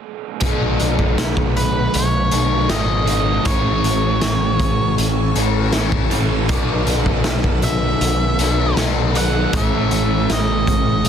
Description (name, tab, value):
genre	rock, shoegaze and dream pop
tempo	79 BPM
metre	4/4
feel	straight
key	B mixolydian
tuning	A4 = 440 Hz
part	string machine, violins	sustained chords	0.4-11.1 s	A4 to E6	-31 LUFS	right 1 dB	ensemble chorus
part	overdriven semi-hollow guitar	riff	0.4-11.1 s	A2 to A4	-22 LUFS	left 12 dB	lush chorus
part	raw garage guitar	riff	0.4-11.1 s	A2 to A4	-23 LUFS	right 13 dB	overdrive, reverse reverb
part	growling picked electric bass	bass	0.4-11.1 s	G#1 to B1	-21 LUFS	equal	overdrive
part	raw garage drum kit	drums	0.4-11.1 s	hi-hat, kick drum, snare drum	-22 LUFS	equal	none
part	octave-fuzz lead guitar	melody	1.6-11.1 s	B4 to F#5	-23 LUFS	equal	distortion, analog delay
room	studio reverb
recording	dense, heavily limited modern master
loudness	-15 LUFS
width	side -8 dB against mid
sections	0.4-11.1 A section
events	none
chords	0.4 B5; 3.5 Amaj7; 6.5 B7sus4; 9.5 Amaj7